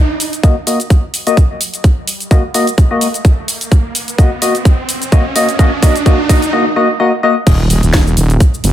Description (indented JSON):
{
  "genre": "bass house",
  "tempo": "128 BPM",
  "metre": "4/4",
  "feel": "swing 56% on 16ths",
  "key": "Eb minor",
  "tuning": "A4 = 439 Hz",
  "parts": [
    { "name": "riser and impact", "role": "sound effects", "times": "0.0-8.7 s", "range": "none", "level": "-21 LUFS", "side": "right 2 dB", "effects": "none" },
    { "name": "garage drum kit", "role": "drums", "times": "0.2-8.7 s", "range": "cabasa, crash cymbal, hi-hat, snare drum", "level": "-19 LUFS", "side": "equal", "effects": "high-pass filter on hats, studio reverb, high-pass filter on snare, high-pass filter on perc, high-pass filter on cymbals" },
    { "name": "percussive organ stab", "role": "stabs", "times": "0.4-7.3 s", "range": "Bb3 to Eb5", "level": "-15 LUFS", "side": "left 2 dB", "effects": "lush chorus, cassette tape, sidechain pumping, dub echo" },
    { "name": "electronic kick drum", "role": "drums", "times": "0.4-8.5 s", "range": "none", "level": "-8 LUFS", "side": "equal", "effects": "studio reverb" },
    { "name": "wobble bass", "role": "bass", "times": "7.5-8.7 s", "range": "Eb1 to Gb1", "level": "-11 LUFS", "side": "equal", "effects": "chorus, sidechain pumping" }
  ],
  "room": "light reverb",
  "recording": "none",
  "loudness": "-10 LUFS",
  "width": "side -12 dB against mid",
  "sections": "0.0-7.5 A section; 7.5-8.7 B section",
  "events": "build-up 0.0-7.5; riser 0.0-6.5; filter sweep on synth stab 0.0-7.5; drum fill 3.7-6.5; drop 7.5-8.7; impact 7.5-8.7",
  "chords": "0.0 Ebm; 7.5 N.C."
}